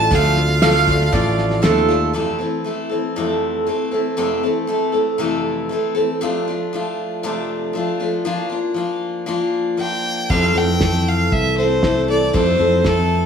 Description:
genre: acoustic folk duo or small band.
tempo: 118 BPM.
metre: 4/4.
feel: straight.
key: F major.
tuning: A4 = 438 Hz.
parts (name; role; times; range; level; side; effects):
clear fiddle; melody; 0.0-1.6, 9.8-13.3 s; A4 to A5; -20 LUFS; equal; none.
picked steel-string acoustic guitar; accompaniment; 0.0-13.3 s; F2 to A4; -19 LUFS; left 1 dB; none.
fingered electric bass; bass; 0.0-2.1, 10.3-13.3 s; A1 to F2; -19 LUFS; equal; none.
cloth-damped thuddy drum kit; drums; 0.1-2.0, 10.3-13.0 s; crash cymbal, kick drum, snare drum; -21 LUFS; equal; none.
mandolin; second line; 0.6-2.1 s; A4 to F5; -21 LUFS; right 7 dB; none.
room: moderate large studio reverb, RT60 1.3 s.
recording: studio reverb.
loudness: -16 LUFS.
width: side -7 dB against mid.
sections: 0.0-2.1 A section; 2.1-10.3 B section; 10.3-13.3 C section.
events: none.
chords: 0.0 Dm; 2.1 Fmaj7; 6.2 Dm7/F; 8.3 Bb/F; 10.3 Fmaj7.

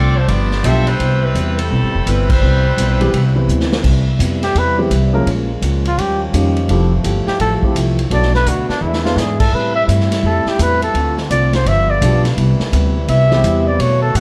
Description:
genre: jazz, big band swing.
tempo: 169 BPM.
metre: 4/4.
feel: swing 64% on 8ths.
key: C major.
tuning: A4 = 440 Hz.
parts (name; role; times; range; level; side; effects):
bright saxophone section; melody; 0.0-3.5 s; G3 to E5; -22 LUFS; equal; none.
hollow-body jazz guitar; accompaniment; 0.0-14.2 s; G2 to G#4; -25 LUFS; equal; none.
upright bass; bass; 0.0-14.2 s; E1 to B2; -18 LUFS; equal; none.
swinging big-band drum kit; drums; 0.3-14.2 s; crash cymbal, hi-hat, kick drum, ride cymbal, snare drum; -25 LUFS; equal; none.
warm grand piano; accompaniment; 0.6-0.9, 3.0-9.2, 12.0-13.8 s; E3 to B4; -23 LUFS; equal; none.
brilliant trombone section; sustained chords; 3.8-14.2 s; C3 to B4; -27 LUFS; equal; none.
breathy trumpet; melody; 4.4-14.2 s; D4 to E5; -20 LUFS; equal; none.
room: moderate recital hall reverb, RT60 1.7 s.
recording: none.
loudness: -15 LUFS.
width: mono.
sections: 0.0-3.8 A section; 3.8-14.2 B section.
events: band accent 2.2; drum fill 3.5-3.8, 8.8-9.2; trumpet solo 3.8-14.2.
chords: 0.3 G7; 1.0 Cmaj7; 5.3 Bbm7; 6.0 Eb9; 6.7 Fmaj9; 8.1 Bm7; 8.8 E7; 9.5 Am7; 11.0 Dm7; 11.7 G7; 12.4 Cmaj7.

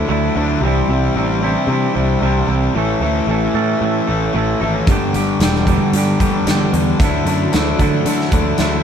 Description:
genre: quiet-loud alternative rock.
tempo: 113 BPM.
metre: 4/4.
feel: straight.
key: unclear.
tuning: A4 = 440 Hz.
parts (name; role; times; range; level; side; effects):
clean electric guitar; arpeggios; 0.0-8.8 s; G2 to A4; -20 LUFS; right 8 dB; none.
fuzz guitar; riff; 0.0-8.8 s; G2 to D4; -18 LUFS; left 4 dB; distortion.
overdriven picked electric bass; bass; 0.1-8.8 s; E1 to D3; -20 LUFS; equal; none.
big rock drum kit; drums; 4.9-8.7 s; hi-hat, kick drum, snare drum; -18 LUFS; equal; none.
room: moderate studio reverb, RT60 0.5 s.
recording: band playing live in one room.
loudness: -14 LUFS.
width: side -8 dB against mid.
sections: 0.0-8.8 A section.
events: none.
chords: 0.0 Dadd9; 0.6 Cadd9; 2.7 A; 4.9 G; 7.0 Dadd9.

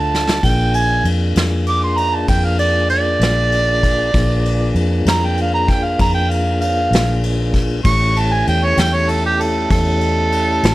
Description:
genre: slow blues.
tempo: 65 BPM (dotted quarters).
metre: 12/8.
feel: straight.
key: unclear.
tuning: A4 = 440 Hz.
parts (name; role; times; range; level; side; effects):
mellow harmonica; second line; 0.0-10.7 s; G4 to D6; -18 LUFS; right 2 dB; overdrive.
mellow tonewheel organ; sustained chords; 0.0-10.7 s; A3 to A4; -22 LUFS; left 1 dB; slow rotary speaker.
vintage muted fingered electric bass; bass; 0.0-10.7 s; A1 to F2; -18 LUFS; equal; none.
vintage brush drum kit; drums; 0.1-10.7 s; kick drum, ride cymbal, snare drum; -21 LUFS; equal; none.
room: studio reverb.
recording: none.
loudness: -14 LUFS.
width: side -17 dB against mid.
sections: 0.0-10.7 A section.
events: harmonica solo 0.0-10.7; drum fill 0.1-0.4.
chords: 0.4 Bb7; 7.9 A7.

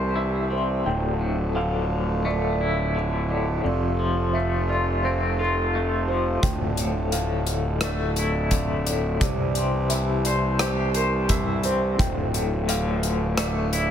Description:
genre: post-rock.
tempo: 86 BPM.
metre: 4/4.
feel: straight.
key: D minor.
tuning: A4 = 440 Hz.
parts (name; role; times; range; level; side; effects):
hand-pumped harmonium; sustained chords; 0.0-13.9 s; C3 to A4; -31 LUFS; right 2 dB; none.
felt-muted upright piano; arpeggios; 0.0-13.9 s; A4 to G5; -32 LUFS; right 3 dB; tape echo.
twangy electric guitar; arpeggios; 0.0-13.9 s; D2 to C5; -27 LUFS; left 3 dB; tremolo, tape echo.
fuzz fingered electric bass; bass; 0.0-13.9 s; D1 to C2; -26 LUFS; equal; overdrive.
big rock drum kit; drums; 6.4-13.9 s; hi-hat, kick drum, rim click; -26 LUFS; equal; none.
room: moderate lush hall reverb, RT60 2.0 s.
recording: big arena sound.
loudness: -21 LUFS.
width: side -9 dB against mid.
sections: 0.0-13.9 A section.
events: none.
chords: 0.0 C; 0.9 Dmadd9; 3.7 F; 6.4 Dmadd9; 9.2 C; 12.0 Dmadd9.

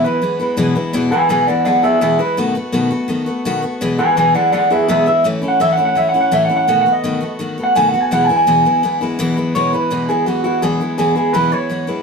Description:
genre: rock.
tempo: 167 BPM.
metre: 4/4.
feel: straight.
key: E major.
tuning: A4 = 440 Hz.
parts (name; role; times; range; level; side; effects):
electric guitar through a small old amp; melody; 0.0-11.9 s; F#4 to G#5; -14 LUFS; right 1 dB; none.
picked steel-string acoustic guitar; accompaniment; 0.0-12.0 s; E2 to F#4; -18 LUFS; left 2 dB; none.
room: moderate small room reverb, RT60 0.5 s.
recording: band playing live in one room.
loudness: -13 LUFS.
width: side -5 dB against mid.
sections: 0.0-9.6 A section; 9.6-12.0 B section.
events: clean electric guitar solo 0.0-9.6.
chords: 0.0 E; 2.4 B7; 3.8 E; 5.2 A; 6.7 B7; 8.1 E.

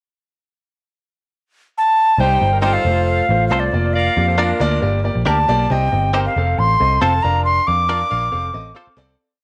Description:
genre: soul.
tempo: 137 BPM.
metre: 4/4.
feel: straight.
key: Bb major.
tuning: A4 = 441 Hz.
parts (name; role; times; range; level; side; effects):
alto recorder; melody; 1.8-9.0 s; D5 to D6; -20 LUFS; equal; none.
clear saxophone section; second line; 2.2-5.0 s; D4 to D5; -26 LUFS; equal; none.
clear grand piano; accompaniment; 2.2-9.2 s; G3 to A5; -25 LUFS; equal; none.
vintage muted picked electric bass; bass; 2.2-9.1 s; F1 to F2; -22 LUFS; equal; none.
direct-recorded clean electric guitar; stabs; 2.6-8.9 s; C4 to D5; -27 LUFS; equal; tape echo.
room: moderate echo chamber reverb, RT60 1.4 s, small room ambience.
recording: none.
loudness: -17 LUFS.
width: mono.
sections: 0.5-2.2 pickup bar; 2.2-9.2 pre-chorus.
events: fade-out 7.5-9.2; grand piano fill 8.5-9.2.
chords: 0.5 N.C.; 2.2 Cm; 2.9 F; 3.7 Bb/F; 4.8 Gm; 5.7 Cm; 6.4 F; 7.2 Bb/F; 8.3 F.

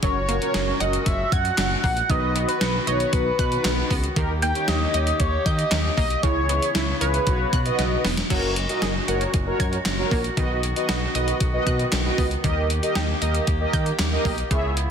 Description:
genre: synth-pop.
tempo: 116 BPM.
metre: 4/4.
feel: straight.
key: B major.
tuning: A4 = 440 Hz.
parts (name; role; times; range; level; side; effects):
octave-doubled lead; melody; 0.0-8.0 s; B4 to G5; -25 LUFS; equal; chorus, phaser.
mellow synth brass; accompaniment; 0.0-14.7 s; C#4 to E5; -27 LUFS; right 1 dB; chorus.
clear woodwind section; sustained chords; 0.0-14.9 s; A#2 to G4; -31 LUFS; equal; none.
wide unison pluck; arpeggios; 0.0-14.7 s; C#3 to G#6; -33 LUFS; right 2 dB; none.
smooth synth bass; bass; 0.0-14.9 s; E1 to D#3; -26 LUFS; equal; none.
gated 80s digital drum machine; drums; 0.0-14.9 s; crash cymbal, handclaps, hi-hat, kick drum, snare drum; -25 LUFS; equal; gated reverb, gated reverb snare, overdrive.
room: light reverb, digital ambience.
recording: dense, heavily limited modern master.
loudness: -20 LUFS.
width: side -7 dB against mid.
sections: 0.0-8.3 A section; 8.3-14.9 B section.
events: drum fill 7.8-8.3.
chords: 0.0 F#add9; 2.1 B; 4.2 D#; 6.2 C#m7; 7.3 Bsus2; 8.3 F#add9; 10.4 B; 12.4 D#.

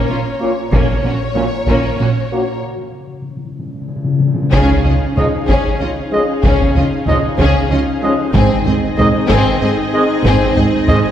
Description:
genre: cinematic, epic orchestral film score.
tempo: 63 BPM (dotted quarters).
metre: 6/8.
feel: straight.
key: Db major.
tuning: A4 = 440 Hz.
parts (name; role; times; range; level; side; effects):
warm symphonic violin section; melody; 0.0-11.0 s; Ab4 to Eb5; -23 LUFS; left 4 dB; none.
warm symphonic violin section; second line; 0.0-11.0 s; Bb3 to Ab4; -24 LUFS; left 3 dB; none.
warm symphonic viola section; accompaniment; 0.0-10.9 s; C4 to Db4; -22 LUFS; right 1 dB; none.
dark symphonic double bass section; bass; 0.1-11.0 s; Ab1 to Db2; -20 LUFS; right 2 dB; none.
rich symphonic cello section; bass; 0.1-11.0 s; Ab2 to Db3; -20 LUFS; right 2 dB; none.
bright trombone section; sustained chords; 0.4-11.0 s; Bb2 to Bb3; -25 LUFS; right 3 dB; none.
mellow French horn section; sustained chords; 0.4-11.0 s; C4 to Ab4; -23 LUFS; left 3 dB; none.
taiko ensemble; drums; 0.7-11.1 s; none; -18 LUFS; equal; none.
timpani; percussion; 2.6-4.5 s; Db3; -19 LUFS; left 4 dB; none.
dark studio string section; sustained chords; 4.5-11.1 s; C4 to F5; -21 LUFS; left 1 dB; none.
warm trumpet; stabs; 5.2-11.0 s; Eb5; -22 LUFS; right 2 dB; none.
room: wet scoring stage reverb, RT60 1.9 s.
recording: heard from further back in the room.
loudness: -12 LUFS.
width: side -10 dB against mid.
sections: 0.0-4.5 A section; 4.5-11.1 A section.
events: break 2.6-4.5; timpani fill 2.6-4.5; drum fill 3.6-4.5; band accent 4.5-5.2.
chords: 0.0 Bbm; 0.7 Gb/Bb (rootless); 2.6 N.C.; 4.5 Dbadd9; 8.3 Ab.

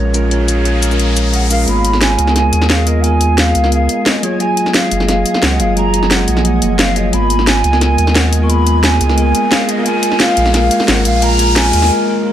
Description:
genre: liquid drum and bass.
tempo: 176 BPM.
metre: 4/4.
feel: straight.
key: G# dorian.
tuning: A4 = 441 Hz.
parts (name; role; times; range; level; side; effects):
breathy mellow jazz flute; melody; 0.0-11.9 s; C#5 to C#6; -18 LUFS; right 1 dB; low-pass filter, digital delay.
bell-like tine electric piano; accompaniment; 0.0-12.3 s; E#3 to A#4; -17 LUFS; equal; wide subtle chorus.
shimmering ambient pad; sustained chords; 0.0-11.9 s; G#3 to A#5; -24 LUFS; right 2 dB; chorus, built-in reverb, vintage 12-bit sampler grit.
warm sub bass; bass; 0.0-11.9 s; F#1 to D#2; -15 LUFS; equal; none.
riser; sound effects; 0.0-1.7, 8.8-11.9 s; none; -23 LUFS; equal; none.
drum and bass drum kit; drums; 0.1-11.9 s; cabasa, hi-hat, snare drum; -16 LUFS; equal; none.
room: moderate digital room reverb, RT60 1.1 s, digital ambience.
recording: low-pass filter.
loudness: -10 LUFS.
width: side -11 dB against mid.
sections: 0.0-1.7 A section; 1.7-12.3 B section.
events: riser 0.0-1.7, 8.8-11.9; filter sweep 0.0-1.7; build-up 1.7-12.3; break 11.9-12.3.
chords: 0.0 A#m7; 1.7 G#m69; 4.2 F#maj9; 7.1 G#m69; 9.9 A#m7.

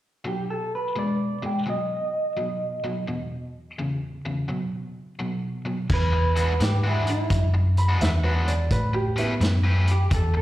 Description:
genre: electric blues shuffle.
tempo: 85 BPM.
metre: 4/4.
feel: swing 66% on 8ths.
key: E mixolydian from 5.9 s.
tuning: A4 = 437 Hz.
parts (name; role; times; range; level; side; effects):
biting overdriven guitar; riff; 0.2-10.4 s; E2 to B4; -29 LUFS; left 1 dB; slapback echo.
electric guitar through a small old amp; melody; 0.3-10.4 s; E4 to G5; -28 LUFS; right 2 dB; spring reverb, slapback echo.
vintage muted fingered electric bass; bass; 5.9-10.4 s; E2 to A2; -21 LUFS; equal; none.
vintage drum kit; drums; 5.9-10.3 s; crash cymbal, hi-hat, kick drum, snare drum; -27 LUFS; equal; none.
clear upright piano; second line; 7.8-9.6 s; B3 to B5; -28 LUFS; right 2 dB; slapback echo.
room: light reverb.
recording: live gig heard through the venue's PA, recital hall reverb.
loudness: -22 LUFS.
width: side -14 dB against mid.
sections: 0.2-5.9 A section; 5.9-10.4 B section.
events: none.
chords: 0.2 B; 3.1 E5; 4.5 B5; 5.9 E9; 8.7 A9.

